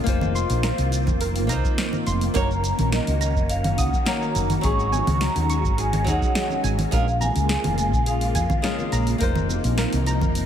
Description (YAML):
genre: sunset chillout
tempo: 105 BPM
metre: 4/4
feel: straight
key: Bb minor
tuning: A4 = 440 Hz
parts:
  - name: flamenco guitar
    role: accompaniment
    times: 0.0-10.5 s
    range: Gb3 to Db5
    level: -30 LUFS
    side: moving between left 8 dB and right 6 dB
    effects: auto-pan, tape echo
  - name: soft string machine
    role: sustained chords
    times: 0.0-10.5 s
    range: C3 to Gb4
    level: -28 LUFS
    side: equal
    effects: phaser, ensemble chorus
  - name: woody fretless electric bass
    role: bass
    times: 0.1-10.5 s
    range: F1 to F2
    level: -24 LUFS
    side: equal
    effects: wide subtle chorus
  - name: deep house drum kit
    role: drums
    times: 0.1-10.5 s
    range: congas, hi-hat, shaker, snare drum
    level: -28 LUFS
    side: equal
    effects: none
  - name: electronic kick drum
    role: drums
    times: 0.1-10.3 s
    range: none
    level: -25 LUFS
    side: equal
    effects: none
  - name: soft round pluck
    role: arpeggios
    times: 0.4-10.2 s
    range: Ab4 to Eb6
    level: -33 LUFS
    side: right 2 dB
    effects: chorus, tape echo
  - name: vibraphone with medium mallets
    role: melody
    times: 2.4-8.9 s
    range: Eb5 to Db6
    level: -28 LUFS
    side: right 1 dB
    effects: tape echo
  - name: congas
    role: percussion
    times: 4.9-10.0 s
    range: none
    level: -35 LUFS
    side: left 3 dB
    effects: none
room: light reverb, digital ambience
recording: none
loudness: -20 LUFS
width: side -9 dB against mid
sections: 0.0-10.5 A section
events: none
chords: 0.1 F7sus4; 2.4 Ebm7/Gb; 4.6 Ab7sus4; 6.9 Bbm7; 9.2 F7sus4